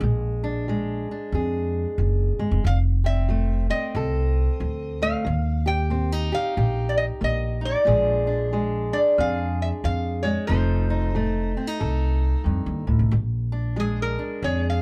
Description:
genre	acoustic country blues, solo or duo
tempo	92 BPM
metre	4/4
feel	swing 62% on 8ths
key	Bb mixolydian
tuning	A4 = 440 Hz
part	fingerpicked steel-string acoustic guitar	accompaniment	0.0-14.8 s	F2 to A4	-29 LUFS	equal	none
part	upright bass	bass	0.0-14.8 s	F1 to F2	-26 LUFS	equal	none
part	lap resonator guitar	melody	2.7-14.8 s	Ab4 to G5	-28 LUFS	equal	none
room	moderate small room reverb, RT60 0.5 s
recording	none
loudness	-24 LUFS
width	mono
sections	0.0-13.1 A section; 13.1-14.8 B section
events	resonator guitar played with a steel bar solo 13.1-14.8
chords	0.0 Bb7; 2.6 F7; 5.3 Eb; 7.9 Bb7; 10.5 F7; 13.1 Bb7

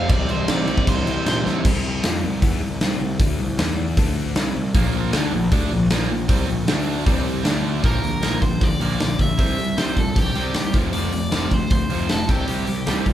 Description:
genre	punk rock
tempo	155 BPM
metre	4/4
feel	straight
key	C mixolydian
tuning	A4 = 439 Hz
part	biting overdriven guitar	melody	0.0-1.4, 7.9-13.1 s	G4 to E5	-27 LUFS	equal	none
part	distorted electric guitar	riff	0.0-1.6, 4.7-13.1 s	F2 to D4	-26 LUFS	right 5 dB	overdrive
part	sludgy distorted guitar	riff	0.0-13.1 s	Bb2 to F4	-26 LUFS	left 5 dB	overdrive
part	fuzz picked electric bass	bass	0.0-13.1 s	F1 to Bb2	-26 LUFS	equal	overdrive
part	big rock drum kit	drums	0.1-13.1 s	crash cymbal, hi-hat, kick drum, snare drum	-21 LUFS	equal	none
room	moderate large studio reverb, RT60 1.2 s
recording	band playing live in one room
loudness	-18 LUFS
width	side -11 dB against mid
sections	0.0-1.7 A section; 1.7-7.8 B section; 7.8-13.1 C section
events	drum fill 1.5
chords	0.1 C; 3.6 E5; 4.0 D5; 4.4 C5; 4.7 Bb5; 6.7 D5; 7.1 C5; 7.5 D5; 7.8 Bb; 9.4 C; 10.7 F; 12.3 C5

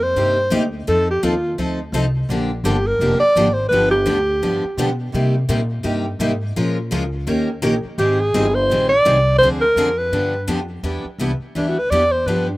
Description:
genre	acoustic string swing (jazz manouche)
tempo	168 BPM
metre	4/4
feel	swing 60% on 8ths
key	C minor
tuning	A4 = 438 Hz
part	warm alto saxophone	melody	0.0-4.9, 8.0-12.6 s	D4 to D5	-16 LUFS	equal	none
part	upright bass	bass	0.0-12.6 s	F1 to C3	-22 LUFS	equal	none
part	picked steel-string acoustic guitar	accompaniment	0.2-12.5 s	C3 to Bb4	-23 LUFS	left 2 dB	none
part	picked steel-string acoustic guitar	accompaniment	0.2-12.5 s	C3 to B4	-29 LUFS	right 5 dB	slapback echo
room	light reverb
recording	recorded outdoors, with no room sound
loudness	-16 LUFS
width	side -19 dB against mid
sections	0.0-10.8 A section; 10.8-12.6 B section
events	alto saxophone solo 10.8-12.6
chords	0.0 Cm9; 0.9 F7; 2.3 Bb6; 3.7 G7; 5.1 Cm7; 6.6 Bbm7; 7.3 Eb7; 8.0 Abmaj7; 9.4 Dm7b5; 10.1 G7; 10.8 Em7

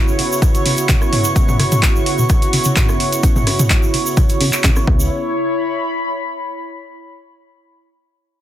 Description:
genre	acid house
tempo	128 BPM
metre	4/4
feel	swing 53% on 16ths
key	C# minor pentatonic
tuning	A4 = 440 Hz
part	warm analog pad	sustained chords	0.0-5.1 s	C#3 to F#4	-23 LUFS	right 1 dB	chorus, sidechain pumping
part	warbly tape-like pad	texture	0.0-6.9 s	E4 to C#6	-21 LUFS	equal	chorus, built-in reverb, sidechain pumping
part	deep acid bass	riff	0.1-5.1 s	B2 to C#4	-20 LUFS	equal	none
part	egg shaker	percussion	0.1-5.1 s	none	-26 LUFS	right 1 dB	none
part	punchy analog drum machine	drums	0.2-4.9 s	handclaps, hi-hat, rim click, toms	-19 LUFS	equal	none
part	electronic kick drum	drums	0.4-5.0 s	none	-15 LUFS	equal	none
part	warm sub bass	bass	4.9-5.1 s	C#2	-21 LUFS	equal	none
room	light reverb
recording	dense, heavily limited modern master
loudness	-13 LUFS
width	side -12 dB against mid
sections	0.0-5.1 A section; 5.1-7.0 B section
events	filter sweep on acid bass 0.0-5.1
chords	0.0 C#m7

